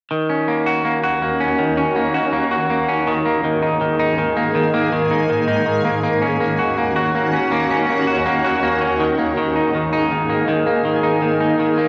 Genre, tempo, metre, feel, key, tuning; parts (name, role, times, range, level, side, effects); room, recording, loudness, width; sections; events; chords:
dream pop; 81 BPM; 4/4; straight; A4 = 444 Hz
shimmering ambient pad; sustained chords; 0.7-11.9 s; D#2 to G#4; -24 LUFS; equal; chorus, built-in reverb
electric guitar at the edge of break-up; arpeggios; 0.1-11.9 s; D#3 to F#4; -20 LUFS; equal; subtle chorus, analog delay
light reverb; dry, gritty hardware recording, transformer saturation; -18 LUFS; mono
0.1-11.9 A section
0.1 D#m7; 3.1 G#sus2; 6.0 D#m7; 9.0 G#sus2